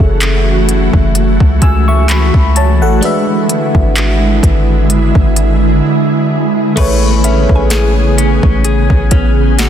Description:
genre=contemporary R&B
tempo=64 BPM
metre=4/4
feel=swing 54% on 16ths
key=unclear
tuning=A4 = 441 Hz
part: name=FM electric piano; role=accompaniment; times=0.0-9.7 s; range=F#3 to E6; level=-18 LUFS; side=equal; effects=chorus, phaser
part: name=ethereal airy pad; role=sustained chords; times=0.0-9.7 s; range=C#3 to G#4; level=-15 LUFS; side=right 1 dB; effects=ensemble chorus, built-in reverb, sidechain pumping
part: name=warm 808-style bass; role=bass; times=0.0-9.7 s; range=F#1 to C#2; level=-12 LUFS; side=equal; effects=none
part: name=smooth R&B drum kit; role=drums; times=0.0-9.7 s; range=crash cymbal, handclaps, hi-hat, kick drum, snare drum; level=-13 LUFS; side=equal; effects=overdrive
part: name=direct-recorded clean electric guitar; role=arpeggios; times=6.8-9.7 s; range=A3 to B4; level=-18 LUFS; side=left 6 dB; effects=spring reverb, ping-pong delay
part: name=mallet-like synth pluck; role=texture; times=7.2-9.7 s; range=E5 to G#5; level=-26 LUFS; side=right 2 dB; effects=chorus, phaser, ping-pong delay
room=light reverb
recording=dense, heavily limited modern master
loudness=-9 LUFS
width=side -10 dB against mid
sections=0.0-6.8 A section; 6.8-9.7 B section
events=break 5.8-6.8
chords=0.0 F#m7; 3.0 E7/G#; 6.8 Amaj9

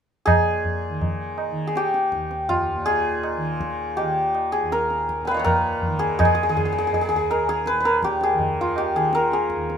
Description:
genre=indian classical, Hindustani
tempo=81 BPM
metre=4/4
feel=straight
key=Eb raga charukeshi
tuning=A4 = 440 Hz
part: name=santur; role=melody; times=0.3-9.8 s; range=F4 to Ab5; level=-21 LUFS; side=left 1 dB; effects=none
part: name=tanpura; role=drone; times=0.3-9.8 s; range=Eb2 to Eb3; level=-31 LUFS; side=equal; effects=none
part: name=tabla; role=percussion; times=0.3-9.8 s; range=none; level=-26 LUFS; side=right 2 dB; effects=none
room=light reverb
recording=minimal, uncompressed stereo recording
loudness=-20 LUFS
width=side -8 dB against mid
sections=0.3-9.8 A section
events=none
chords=none

